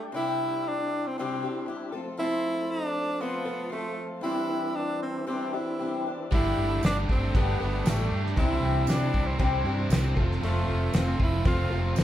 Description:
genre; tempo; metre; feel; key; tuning
folk rock and heartland rock; 117 BPM; 4/4; straight; C major; A4 = 442 Hz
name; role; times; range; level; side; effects
clear tenor saxophone; melody; 0.0-11.9 s; A3 to F4; -30 LUFS; right 2 dB; none
picked twelve-string acoustic guitar; accompaniment; 0.0-12.0 s; G2 to A4; -32 LUFS; left 4 dB; none
tonewheel organ; sustained chords; 0.0-12.0 s; E3 to G4; -39 LUFS; right 1 dB; slow rotary speaker, overdrive
crunchy overdriven guitar; riff; 6.3-12.0 s; F2 to G4; -33 LUFS; right 2 dB; none
fingered electric bass; bass; 6.3-12.0 s; F1 to C3; -28 LUFS; equal; none
cloth-damped thuddy drum kit; drums; 6.3-12.0 s; crash cymbal, kick drum, snare drum; -26 LUFS; equal; none
tambourine; percussion; 6.8-12.0 s; none; -44 LUFS; right 8 dB; none
room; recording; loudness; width
moderate large studio reverb, RT60 0.8 s; band playing live in one room; -25 LUFS; side -12 dB against mid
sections
0.0-12.0 A section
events
none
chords
0.2 Cadd9; 1.9 F; 4.3 Cadd9/E; 6.3 Gsus2; 8.4 Cadd9; 10.2 F

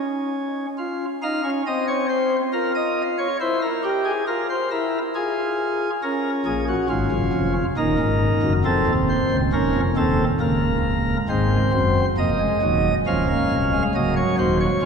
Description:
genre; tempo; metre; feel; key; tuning
classical, baroque-style 4-part fugue for pipe organ; 68 BPM; 3/4; straight; Bb minor; A4 = 440 Hz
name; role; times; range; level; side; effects
pipe organ, sparkling flutes; solo; 0.0-14.9 s; C1 to F5; -19 LUFS; equal; none
room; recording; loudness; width
wet cathedral reverb, RT60 4.5 s; recorded in a church or concert hall; -19 LUFS; side -6 dB against mid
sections
0.0-11.3 A section; 11.3-14.9 B section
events
none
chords
0.0 N.C.; 0.8 F5; 2.5 Bbm/F; 3.4 C7/E; 5.2 Fm; 6.0 Bbm; 7.8 Ebm; 8.6 F7; 10.4 Bbm/Db; 11.3 Ab; 13.1 Dbmaj7; 13.9 Gb/Db

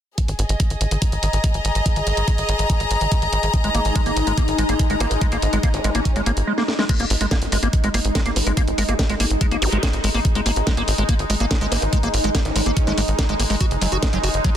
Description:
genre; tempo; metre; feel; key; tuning
psychedelic trance; 143 BPM; 4/4; straight; unclear; A4 = 441 Hz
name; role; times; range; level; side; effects
electronic kick drum; drums; 0.2-14.5 s; none; -20 LUFS; equal; none
techno drum kit; drums; 0.2-14.5 s; crash cymbal, hi-hat, snare drum; -26 LUFS; equal; none
dark studio string section; texture; 0.2-6.5, 13.6-14.6 s; F#4 to A#5; -24 LUFS; left 2 dB; sidechain pumping
tight sequencer bass; bass; 0.3-14.4 s; F#1 to G#1; -22 LUFS; equal; none
bubbling stepped-filter texture; sustained chords; 3.5-14.6 s; G#3 to D#4; -26 LUFS; left 1 dB; chorus, built-in reverb, sidechain pumping
liquid acid bass; riff; 3.6-14.5 s; F#3 to F#4; -25 LUFS; equal; chorus, auto-pan, cassette tape, sidechain pumping, tape echo
vowel-sweep wobble bass; second line; 5.0-13.0 s; F#3 to C#4; -34 LUFS; right 3 dB; lush chorus, sidechain pumping, high-pass filter, dub echo
zap; sound effects; 9.6-9.7 s; none; -30 LUFS; equal; none
room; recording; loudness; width
light reverb; dense, heavily limited modern master; -17 LUFS; side -10 dB against mid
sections
0.2-6.9 A section; 6.9-14.6 B section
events
drum fill 6.6-6.9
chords
0.2 G#5; 13.6 F#5

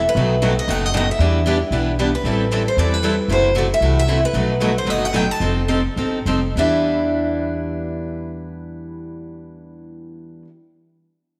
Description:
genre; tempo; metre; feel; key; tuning
acoustic string swing (jazz manouche); 195-229 BPM; 4/4; swing 58% on 8ths; E minor; A4 = 440 Hz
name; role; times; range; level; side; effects
picked steel-string acoustic guitar; melody; 0.0-10.4 s; B4 to A5; -24 LUFS; equal; none
upright bass; bass; 0.0-10.4 s; F1 to E2; -24 LUFS; equal; none
picked steel-string acoustic guitar; accompaniment; 0.2-10.5 s; B2 to A4; -25 LUFS; equal; none
picked steel-string acoustic guitar; accompaniment; 0.2-10.5 s; B2 to B4; -29 LUFS; equal; none
room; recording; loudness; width
wet echo chamber reverb, RT60 1.7 s, small room reverb; none; -19 LUFS; mono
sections
0.0-2.2 A section; 2.2-6.6 B section; 6.6-9.0 C section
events
slowing down 4.3-6.6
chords
0.2 B7; 1.2 Em7; 2.2 Am9; 3.3 F#m7b5; 4.3 B7; 5.4 F9; 6.6 Em7

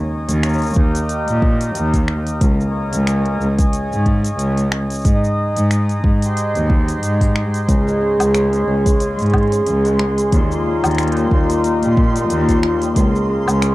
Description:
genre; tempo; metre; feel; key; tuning
folktronica; 91 BPM; 4/4; swing 56% on 16ths; unclear; A4 = 435 Hz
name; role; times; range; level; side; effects
mellow accordion; sustained chords; 0.0-13.7 s; Db3 to Eb5; -24 LUFS; equal; none
warm cello; bass; 0.3-13.7 s; Db2 to Bb2; -18 LUFS; equal; tube saturation
organic electronic drum kit; drums; 0.3-13.7 s; finger snaps, hi-hat, shaker, woodblock; -26 LUFS; left 1 dB; none
electronic kick drum; drums; 0.8-13.1 s; none; -16 LUFS; equal; none
cimbalom; arpeggios; 7.7-13.7 s; Bb2 to Db4; -18 LUFS; equal; tape echo
flickering grainy texture; texture; 8.5-13.7 s; C6; -28 LUFS; right 4 dB; built-in reverb
room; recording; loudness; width
little or no reverb; dry, close 1970s-style studio recording; -14 LUFS; side -18 dB against mid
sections
0.0-13.7 A section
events
none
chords
0.0 Eb; 2.4 Dbsus2; 5.0 Abmaj7; 7.7 Dbsus2; 10.3 Eb; 13.0 Dbsus2

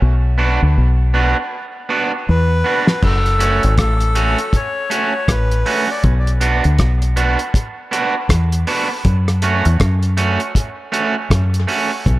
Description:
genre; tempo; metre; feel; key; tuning
dub reggae; 80 BPM; 4/4; swing 60% on 16ths; F# minor; A4 = 441 Hz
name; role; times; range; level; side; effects
deep dub fingered electric bass; bass; 0.0-12.2 s; F#1 to F#2; -15 LUFS; equal; none
electric guitar at the edge of break-up; accompaniment; 0.4-11.9 s; A3 to F#4; -20 LUFS; right 3 dB; tape echo
melodica; melody; 2.3-6.0 s; A4 to D5; -20 LUFS; left 2 dB; tape echo
cloth-damped thuddy drum kit; drums; 2.9-12.2 s; crash cymbal, hi-hat, kick drum, rim click, snare drum; -19 LUFS; equal; none
room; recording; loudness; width
light reverb, studio reverb; none; -14 LUFS; side -17 dB against mid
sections
0.0-3.0 A section; 3.0-12.2 B section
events
drum fill 2.3-3.0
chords
0.0 Bm; 3.0 F#m; 6.0 Bm; 9.1 F#m

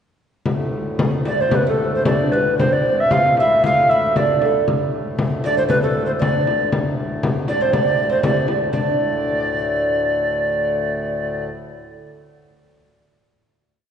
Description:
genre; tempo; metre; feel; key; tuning
medieval dance; 113-125 BPM; 2/4; straight; D dorian; A4 = 440 Hz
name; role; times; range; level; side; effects
hand-pumped harmonium; drone; 0.5-11.5 s; D2 to A2; -28 LUFS; equal; none
frame drum; percussion; 0.5-9.0 s; none; -21 LUFS; left 2 dB; none
mellow tenor recorder; melody; 1.3-11.4 s; A4 to F5; -19 LUFS; equal; none
oud; second line; 1.3-12.1 s; A3 to F4; -23 LUFS; right 5 dB; none
room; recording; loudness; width
wet concert hall reverb, RT60 2.4 s; recorded in a church or concert hall, nothing above 10.3 kHz; -16 LUFS; side -8 dB against mid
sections
0.5-8.7 A section; 8.7-10.7 final chord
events
speeding up 0.5-10.7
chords
none

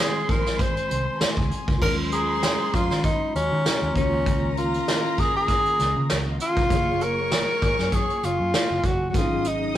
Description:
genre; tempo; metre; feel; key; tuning
lush 1970s-style soul; 98 BPM; 4/4; swing 54% on 16ths; Db major; A4 = 440 Hz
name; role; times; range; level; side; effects
breathy tenor saxophone; melody; 0.0-9.8 s; Db4 to C5; -24 LUFS; equal; none
warm symphonic violin section; second line; 0.0-9.8 s; Eb4 to Eb6; -33 LUFS; equal; none
mellow tine electric piano; accompaniment; 0.0-9.8 s; Eb3 to Ab4; -31 LUFS; left 2 dB; medium stereo tremolo
vibraphone with soft mallets; texture; 0.0-9.3 s; Gb4 to Db6; -37 LUFS; left 2 dB; none
vintage muted fingered electric bass; bass; 0.3-9.8 s; F1 to Eb3; -29 LUFS; equal; none
vintage brush drum kit; drums; 0.3-9.8 s; crash cymbal, hi-hat, kick drum, snare drum; -25 LUFS; equal; none
room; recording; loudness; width
moderate stone room reverb, RT60 1.1 s; rough rehearsal-room recording, warm saturation; -20 LUFS; side -12 dB against mid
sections
0.0-1.8 A section; 1.8-9.8 B section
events
none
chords
0.0 Ab7; 1.8 Ebm11; 4.0 Db69; 6.7 Gbmaj9; 9.1 Ab7sus4

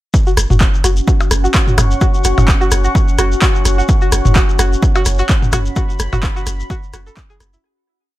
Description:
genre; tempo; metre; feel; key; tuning
minimal techno; 128 BPM; 4/4; swing 55% on 16ths; unclear; A4 = 440 Hz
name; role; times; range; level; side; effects
electronic kick drum; drums; 0.1-7.3 s; none; -14 LUFS; equal; overdrive
shekere; percussion; 0.1-7.6 s; none; -26 LUFS; left 4 dB; none
warbly tape-like pad; texture; 0.5-7.6 s; C#4 to C#6; -22 LUFS; equal; chorus, built-in reverb, sidechain pumping
string-like resonator pluck; riff; 0.3-7.6 s; E4 to A4; -23 LUFS; equal; chorus, sidechain pumping, tape echo
punchy sub bass; bass; 0.4-7.6 s; F#1; -15 LUFS; equal; sidechain pumping
punchy analog drum machine; drums; 0.4-7.5 s; handclaps, hi-hat; -20 LUFS; right 1 dB; overdrive
minimal click drum kit; percussion; 0.4-7.5 s; percussion blips, rim click, toms; -19 LUFS; left 1 dB; tape echo
room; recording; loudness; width
light reverb; none; -11 LUFS; side -16 dB against mid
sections
0.1-7.6 groove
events
fade-out 5.1-7.6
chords
0.1 F#5

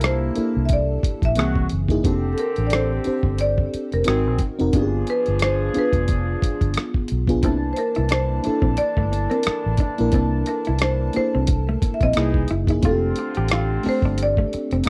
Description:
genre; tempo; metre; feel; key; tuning
R&B, neo-soul; 89 BPM; 4/4; swing 56% on 16ths; F major; A4 = 439 Hz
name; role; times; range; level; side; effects
FM electric piano with soft pad layer; accompaniment; 0.0-14.9 s; E3 to A5; -27 LUFS; equal; chorus
warm horn section; stabs; 0.0-14.9 s; Bb2 to A5; -34 LUFS; equal; none
vintage muted fingered electric bass; bass; 0.0-14.9 s; F1 to C2; -25 LUFS; equal; none
dusty soul sampler-style drum kit; drums; 0.0-14.9 s; hi-hat, kick drum, rim click; -25 LUFS; equal; none
marimba with medium hard mallets; melody; 0.1-14.9 s; A4 to E5; -28 LUFS; equal; none
vintage hollow-body jazz guitar; second line; 7.4-14.8 s; A3 to G4; -31 LUFS; equal; none
room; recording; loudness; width
little or no reverb; dry, close 1970s-style studio recording; -21 LUFS; mono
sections
0.0-14.9 A section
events
none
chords
0.0 C13; 1.4 C7alt; 2.0 F69; 4.1 Ab9; 4.7 G7b9; 7.4 C13; 12.2 C7alt; 12.8 F69

